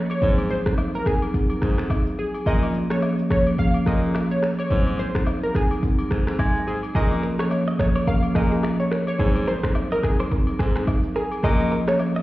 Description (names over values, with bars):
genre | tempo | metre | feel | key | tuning
afrobeats | 107 BPM | 4/4 | swing 58% on 16ths | unclear | A4 = 440 Hz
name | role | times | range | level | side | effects
analog pluck | melody | 0.1-12.0 s | Ab4 to F5 | -27 LUFS | equal | chorus
afro-pop drum kit | drums | 0.1-12.2 s | finger snaps, kick drum, rim click, shaker | -23 LUFS | equal | none
agogo bells and woodblock | percussion | 0.1-12.1 s | none | -38 LUFS | left 3 dB | none
marimba with soft mallets | accompaniment | 0.2-12.1 s | F3 to Ab4 | -24 LUFS | equal | none
breathy baritone saxophone | bass | 0.2-11.8 s | Ab2 to Ab3 | -26 LUFS | equal | none
direct-recorded clean electric guitar | riff | 7.0-12.2 s | Ab4 to Eb5 | -31 LUFS | right 2 dB | wide subtle chorus, tape echo
room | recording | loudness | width
light reverb | heard muffled through a wall, stone room reverb, EQ | -19 LUFS | side -17 dB against mid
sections
0.0-12.2 A section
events
none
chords
0.2 Ab7; 2.5 Bbm7; 4.7 Ab7; 6.9 Bbm7; 9.2 Ab7; 11.4 Bbm7